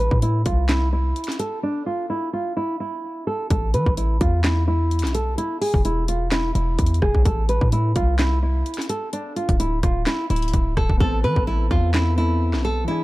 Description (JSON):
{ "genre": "hip hop, trap", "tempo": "128 BPM", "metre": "4/4", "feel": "half-time", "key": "A harmonic minor", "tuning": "A4 = 440 Hz", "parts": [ { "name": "nylon-string guitar", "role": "melody", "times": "0.0-13.0 s", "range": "D4 to B4", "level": "-24 LUFS", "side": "right 1 dB", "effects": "low-pass filter, ping-pong delay" }, { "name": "hard-hitting 808-style bass", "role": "bass", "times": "0.0-12.9 s", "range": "D1 to E3", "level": "-21 LUFS", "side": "equal", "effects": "none" }, { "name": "trap drum kit", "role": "drums", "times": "0.1-12.6 s", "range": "handclaps, hi-hat, kick drum, rim click, snare drum", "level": "-23 LUFS", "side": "equal", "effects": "none" }, { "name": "soft electric-piano-like synth keys", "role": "accompaniment", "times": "11.0-13.0 s", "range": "E3 to A4", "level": "-28 LUFS", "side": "left 2 dB", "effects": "chorus, low-pass filter" } ], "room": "digital ambience", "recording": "dark, warm production", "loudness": "-19 LUFS", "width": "side -18 dB against mid", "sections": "0.0-13.0 A section", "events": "filter sweep 0.0-11.0; break 1.6-3.5; hi-hats muted 11.0-13.0", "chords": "0.0 Am; 1.6 N.C.; 3.5 Asus2; 5.4 E5; 7.3 Am; 9.1 Dsus2; 11.0 Amadd9" }